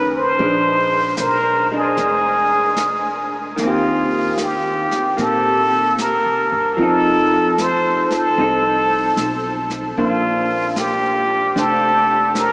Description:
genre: jazz ballad.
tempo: 75 BPM.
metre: 4/4.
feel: swing 68% on 8ths.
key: Bb major.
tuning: A4 = 437 Hz.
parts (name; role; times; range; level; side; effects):
trumpet with plunger mute; melody; 0.0-12.5 s; F4 to C5; -16 LUFS; equal; diffuse ambient delay.
vintage hollow-body jazz guitar; accompaniment; 0.0-12.5 s; D#3 to C5; -21 LUFS; equal; analog chorus.
upright bass; bass; 0.0-12.5 s; F1 to C3; -30 LUFS; equal; none.
jazz brush drum kit; drums; 0.4-12.5 s; brushed snare drum, hi-hat, snare drum; -31 LUFS; equal; none.
room: wet huge ambient reverb, RT60 8.1 s.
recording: dreamy mix soaked in reverb, small speaker sound.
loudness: -15 LUFS.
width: side -28 dB against mid.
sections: 0.0-12.5 A section.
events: none.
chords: 0.4 Bb9; 3.6 Eb6; 6.8 F7; 10.0 Bbmaj9.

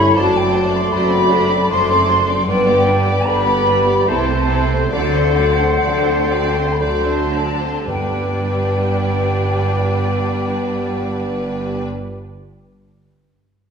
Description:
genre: classical, slow romantic movement for symphony orchestra.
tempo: 54-80 BPM.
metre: 3/4.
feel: rubato.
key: G major.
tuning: A4 = 437 Hz.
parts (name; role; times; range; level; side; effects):
warm symphonic violin section; melody; 0.0-11.9 s; A4 to D5; -27 LUFS; left 4 dB; none.
clear oboe; second line; 0.0-11.9 s; C5 to D5; -26 LUFS; equal; none.
flute section; second line; 0.0-11.9 s; F#5 to C6; -20 LUFS; equal; none.
warm symphonic violin section; second line; 0.0-11.9 s; C4 to G4; -28 LUFS; left 3 dB; none.
breathy bassoon; accompaniment; 0.0-11.9 s; A3 to B3; -24 LUFS; right 3 dB; none.
warm symphonic viola section; accompaniment; 0.0-11.9 s; F#3 to C4; -28 LUFS; right 1 dB; none.
mellow French horn section; sustained chords; 0.0-11.9 s; G3 to B4; -23 LUFS; left 2 dB; none.
concert harp; arpeggios; 0.0-12.7 s; F#2 to D5; -26 LUFS; left 9 dB; none.
clear symphonic double bass section; bass; 0.0-11.9 s; F#1 to D2; -24 LUFS; right 2 dB; none.
rich symphonic cello section; bass; 0.0-11.9 s; F#2 to D3; -22 LUFS; right 2 dB; none.
timpani; percussion; 7.9-12.6 s; G2; -31 LUFS; left 2 dB; none.
room: wet recital hall reverb, RT60 1.6 s.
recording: recorded in a church or concert hall.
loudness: -14 LUFS.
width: side -6 dB against mid.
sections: 0.0-7.9 A section; 7.9-11.1 B section.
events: slowing down 1.3-7.9.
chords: 0.2 D7/F#; 2.5 G; 4.1 Am/C; 4.9 D7; 7.9 G.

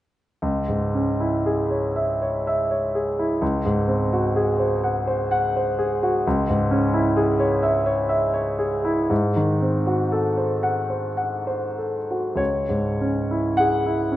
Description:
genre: classical, romantic nocturne for solo piano.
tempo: 47-66 BPM.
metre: 3/4.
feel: rubato.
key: C# minor.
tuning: A4 = 438 Hz.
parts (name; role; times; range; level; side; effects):
clear grand piano; solo; 0.4-14.2 s; C#2 to F#5; -20 LUFS; equal; none.
room: wet recital hall reverb, RT60 1.3 s.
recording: nothing above 10.5 kHz.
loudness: -20 LUFS.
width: side -14 dB against mid.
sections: 0.4-12.4 A section; 12.4-14.2 B section.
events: none.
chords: 0.4 C#m; 3.4 G#7/C#; 6.3 C#m; 9.1 G#7b9; 12.4 C#m.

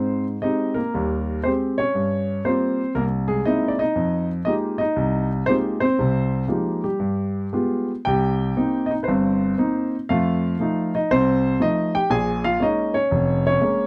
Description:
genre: solo jazz.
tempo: 118 BPM.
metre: 4/4.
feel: swing 66% on 8ths, rubato.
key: F minor.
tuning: A4 = 441 Hz.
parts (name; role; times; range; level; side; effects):
warm grand piano; solo; 0.0-13.9 s; F1 to Ab5; -22 LUFS; equal; none.
room: wet booth ambience, RT60 0.3 s.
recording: none.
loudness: -22 LUFS.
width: mono.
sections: 0.0-8.1 A section; 8.1-13.9 B section.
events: none.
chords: 0.0 Abmaj7; 2.0 Gm7b5; 3.0 C7alt; 4.0 Fm11; 7.0 G7b9; 8.1 Cm7; 10.1 F7; 12.1 Bbm7.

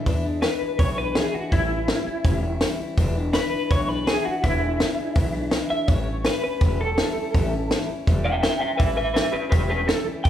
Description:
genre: rockabilly.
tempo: 165 BPM.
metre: 4/4.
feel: straight.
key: unclear.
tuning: A4 = 440 Hz.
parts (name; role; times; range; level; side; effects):
picked steel-string acoustic guitar; accompaniment; 0.0-10.3 s; E2 to E4; -30 LUFS; left 2 dB; none.
upright bass; bass; 0.1-10.3 s; E1 to E2; -28 LUFS; equal; none.
compact cocktail drum kit; drums; 0.1-10.3 s; hi-hat, kick drum, snare drum; -22 LUFS; equal; none.
electric guitar through a small old amp; melody; 0.4-10.3 s; E4 to G5; -26 LUFS; equal; tremolo.
room: light reverb.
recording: band playing live in one room.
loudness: -20 LUFS.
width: side -10 dB against mid.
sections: 0.1-10.3 A section.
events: clean electric guitar solo 0.1-10.3.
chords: 0.1 E7; 1.5 A7; 3.0 E7; 5.9 A7.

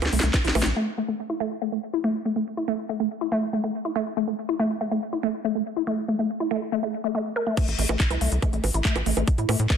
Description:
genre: psychedelic trance.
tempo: 141 BPM.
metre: 4/4.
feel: straight.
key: A phrygian.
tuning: A4 = 440 Hz.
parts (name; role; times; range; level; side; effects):
tight sequencer bass; bass; 0.0-0.7, 7.7-9.7 s; A1 to A2; -24 LUFS; equal; none.
drum and bass drum kit; drums; 0.0-0.7, 7.6-9.8 s; bongos, crash cymbal, handclaps, hi-hat, snare drum; -26 LUFS; right 2 dB; none.
woody wave-folded pluck; riff; 0.1-9.8 s; A3 to Bb4; -25 LUFS; equal; chorus, auto-pan, sidechain pumping, ping-pong delay.
electronic kick drum; drums; 0.3-0.4, 7.6-9.8 s; none; -22 LUFS; equal; none.
room: light reverb.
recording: dense, heavily limited modern master.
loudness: -23 LUFS.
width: side -7 dB against mid.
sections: 0.8-7.6 A section; 7.6-9.8 B section.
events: drum fill 0.0-0.8; filter sweep on synth arpeggio sound 0.8-7.6; drop 7.6-9.8.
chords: 0.0 A5.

